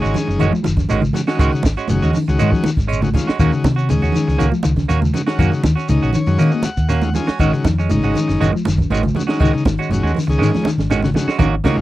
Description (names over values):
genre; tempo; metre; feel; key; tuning
afrobeat; 120 BPM; 4/4; straight; unclear; A4 = 440 Hz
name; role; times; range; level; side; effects
overdriven combo organ; accompaniment; 0.0-11.8 s; Eb3 to Ab5; -22 LUFS; left 2 dB; none
mellow electric guitar; arpeggios; 0.0-11.8 s; Db3 to Bb3; -20 LUFS; left 3 dB; wide subtle chorus
semi-hollow electric guitar; stabs; 0.0-11.8 s; Eb3 to Gb4; -22 LUFS; right 6 dB; none
hollow-body short-scale fingered electric bass; bass; 0.0-11.8 s; Gb1 to Eb3; -19 LUFS; equal; none
compact cocktail drum kit; drums; 0.0-11.8 s; hi-hat, kick drum, snare drum; -20 LUFS; equal; none
congas; percussion; 0.1-11.8 s; none; -24 LUFS; right 4 dB; none
shekere; percussion; 0.1-11.8 s; none; -29 LUFS; left 2 dB; none
room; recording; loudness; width
light reverb; dry, close 1970s-style studio recording; -14 LUFS; side -15 dB against mid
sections
0.0-11.4 A section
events
transistor combo organ fill 5.9-7.4; drum fill 10.4-11.4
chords
0.0 Ab7sus4; 3.4 Ebm7; 7.4 Ab7sus4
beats
0.39 0.89 | 1.39 1.89 2.39 2.89 | 3.39 3.89 4.39 4.90 | 5.40 5.90 6.40 6.90 | 7.40 7.90 8.40 8.90 | 9.40 9.90 10.40 10.90 | 11.39